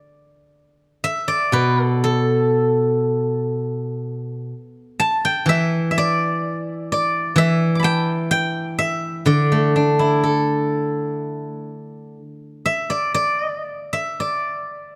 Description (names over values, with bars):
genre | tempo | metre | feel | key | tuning
chinese traditional, Chinese solo plucked strings | 56-64 BPM | 4/4 | rubato | D zhi mode | A4 = 440 Hz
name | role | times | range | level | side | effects
steel-string zither | solo | 0.0-15.0 s | B2 to D6 | -20 LUFS | equal | none
room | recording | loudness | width
light reverb | close, detailed microphones | -20 LUFS | mono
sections
0.0-15.0 A section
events
none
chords
none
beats
0.54 1.55 2.55 | 3.54 4.52 5.48 6.44 | 7.39 8.33 9.28 10.24 | 11.20 12.16 13.15 14.20